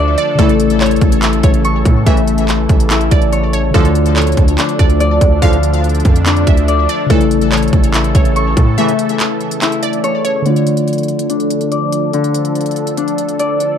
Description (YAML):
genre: hip hop, trap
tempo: 143 BPM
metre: 4/4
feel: half-time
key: D harmonic minor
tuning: A4 = 438 Hz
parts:
  - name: glassy wavetable pluck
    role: second line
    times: 0.0-10.4 s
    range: A4 to F5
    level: -22 LUFS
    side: right 1 dB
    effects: chorus, ping-pong delay
  - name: muted felt-like synth keys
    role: accompaniment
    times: 0.0-13.8 s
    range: C#3 to F4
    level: -20 LUFS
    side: left 2 dB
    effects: chorus, low-pass filter
  - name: sweeping resonant pad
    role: sustained chords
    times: 0.0-13.8 s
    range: C#3 to A4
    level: -23 LUFS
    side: right 2 dB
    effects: chorus, low-pass filter
  - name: Celtic harp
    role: arpeggios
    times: 0.0-13.8 s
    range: D3 to C#6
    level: -17 LUFS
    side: left 5 dB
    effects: low-pass filter, ping-pong delay
  - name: distorted 808-style bass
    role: bass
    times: 0.0-8.8 s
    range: A1 to A2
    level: -15 LUFS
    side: right 1 dB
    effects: distortion
  - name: trap drum kit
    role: drums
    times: 0.2-13.7 s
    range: handclaps, hi-hat, kick drum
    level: -14 LUFS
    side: right 1 dB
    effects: none
  - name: mellow brass ensemble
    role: stabs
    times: 0.4-8.9 s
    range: A2 to F3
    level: -24 LUFS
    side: right 6 dB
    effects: ping-pong delay
room: light reverb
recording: dark, warm production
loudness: -11 LUFS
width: side -8 dB against mid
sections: 0.0-10.5 A section; 10.5-13.8 B section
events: break 8.8-10.5; filter sweep 10.5-13.8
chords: 0.4 A; 3.7 Dm; 7.1 A; 10.5 Dm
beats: | 0.39 0.81 1.23 1.65 | 2.06 2.48 2.90 3.32 | 3.74 4.16 4.58 5.00 | 5.42 5.84 6.26 6.68 | 7.10 7.52 7.94 8.36 | 8.78 9.20 9.62 10.04 | 10.46 10.88 11.30 11.71 | 12.13 12.55 12.97 13.39